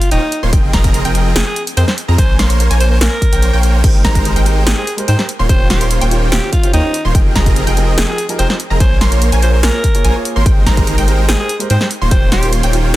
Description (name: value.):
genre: future bass.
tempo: 145 BPM.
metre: 4/4.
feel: half-time.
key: Ab major.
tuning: A4 = 440 Hz.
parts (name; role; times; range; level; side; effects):
raspy alto saxophone; melody; 0.0-12.5 s; Eb4 to C5; -22 LUFS; equal; sidechain pumping, digital delay.
big-room dance drum kit; drums; 0.0-13.0 s; crash cymbal, hi-hat, snare drum; -19 LUFS; equal; none.
wide unison pluck; arpeggios; 0.1-12.9 s; G5 to C6; -25 LUFS; right 1 dB; sidechain pumping.
supersaw chords; riff; 0.1-12.9 s; Eb3 to C6; -20 LUFS; right 1 dB; sidechain pumping.
saturated sub bass; bass; 0.1-12.9 s; Eb1 to Ab2; -14 LUFS; equal; sidechain pumping.
electronic kick drum; drums; 0.5-12.2 s; none; -13 LUFS; equal; none.
warm concert grand piano; accompaniment; 3.8-13.0 s; Eb3 to Db5; -23 LUFS; right 2 dB; sidechain pumping, tape echo.
room: little or no reverb.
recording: dense, heavily limited modern master.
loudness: -11 LUFS.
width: side -16 dB against mid.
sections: 0.0-13.0 A section.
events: none.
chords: 0.0 Eb13; 0.5 Fm11; 2.2 Bbm7; 3.8 Abmaj9; 5.3 Eb13; 7.1 Fm11; 8.8 Bbm7; 10.5 Abmaj9; 11.9 Eb13.